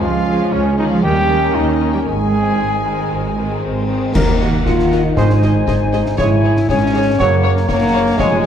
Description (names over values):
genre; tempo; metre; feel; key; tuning
cinematic, heroic adventure film score; 118 BPM; 4/4; straight; Ab major; A4 = 440 Hz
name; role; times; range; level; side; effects
warm symphonic violin section; melody; 0.0-8.5 s; Db5 to Ab5; -30 LUFS; left 8 dB; none
warm symphonic violin section; second line; 0.0-8.5 s; Ab3 to Db5; -28 LUFS; left 5 dB; none
warm symphonic viola section; accompaniment; 0.0-8.5 s; Eb3 to Db5; -27 LUFS; left 1 dB; none
warm trombone section; sustained chords; 0.0-8.4 s; Db3 to Db4; -24 LUFS; right 2 dB; none
dark trumpet; stabs; 0.0-8.4 s; Db4 to Db5; -21 LUFS; right 1 dB; none
dark symphonic cello section; bass; 0.0-8.5 s; F2 to Ab3; -21 LUFS; right 2 dB; none
rich symphonic double bass section; bass; 0.0-8.5 s; F1 to Eb2; -20 LUFS; right 3 dB; none
cymbal swell, clash cymbals and concert bass drum; percussion; 0.0-5.1 s; none; -25 LUFS; left 1 dB; none
timpani; percussion; 1.0-5.9 s; Ab2 to Eb3; -22 LUFS; left 1 dB; none
warm French horn section; sustained chords; 3.6-8.5 s; Ab3 to F4; -18 LUFS; left 2 dB; none
mellow clarinet; second line; 4.1-8.5 s; Bb4 to Db5; -25 LUFS; left 5 dB; none
large flute ensemble; second line; 4.2-8.5 s; Gb5 to Ab5; -26 LUFS; left 2 dB; none
concert snare drum, clash cymbals and concert bass drum; drums; 4.2-8.4 s; none; -24 LUFS; left 1 dB; none
room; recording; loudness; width
wet scoring stage reverb, RT60 1.7 s; dark, warm production; -13 LUFS; side -8 dB against mid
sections
0.0-4.2 A section; 4.2-8.5 B section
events
band accent 4.2-4.7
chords
0.0 Db; 1.0 Eb7; 2.1 Ab; 4.2 Ebm; 5.2 Ab; 6.2 Dbm/Ab; 7.2 Gb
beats
| 0.04 0.54 1.05 1.56 | 2.07 2.60 3.12 3.64 | 4.15 4.66 5.17 5.67 | 6.18 6.69 7.19 7.69 | 8.19